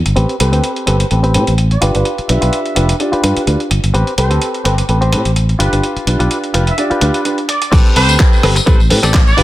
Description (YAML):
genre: filtered disco house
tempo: 127 BPM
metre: 4/4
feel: swing 55% on 16ths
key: A minor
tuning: A4 = 439 Hz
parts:
  - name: fingered electric bass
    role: bass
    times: 0.1-9.4 s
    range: F1 to A2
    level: -14 LUFS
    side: equal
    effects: sidechain pumping, low-pass filter
  - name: dusty soul sampler-style drum kit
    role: drums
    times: 0.1-9.4 s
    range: crash cymbal, handclaps, hi-hat, rim click, tambourine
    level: -19 LUFS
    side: equal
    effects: sidechain pumping on hats, sidechain pumping on cymbals, sidechain pumping on perc
  - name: direct-recorded clean electric guitar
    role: riff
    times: 0.2-9.4 s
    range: C4 to D5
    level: -20 LUFS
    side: left 1 dB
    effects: vintage 12-bit sampler grit, sidechain pumping, low-pass filter
  - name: muted trumpet section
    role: melody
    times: 0.4-9.4 s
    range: B4 to E5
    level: -22 LUFS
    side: right 2 dB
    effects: sidechain pumping, low-pass filter, digital delay
  - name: warm grand piano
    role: accompaniment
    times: 0.4-9.4 s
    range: C4 to D5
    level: -18 LUFS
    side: equal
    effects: phaser, sidechain pumping, low-pass filter
  - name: electronic kick drum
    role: drums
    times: 7.7-9.2 s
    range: none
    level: -9 LUFS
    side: equal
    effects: overdrive
room: light reverb, digital ambience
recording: none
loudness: -11 LUFS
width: side -15 dB against mid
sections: 0.0-7.7 A section; 7.7-9.4 B section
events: filter sweep 0.0-7.7; drop 7.7-9.4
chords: 0.2 Am9; 1.8 G7; 3.9 Am9; 5.6 G7; 7.7 Am9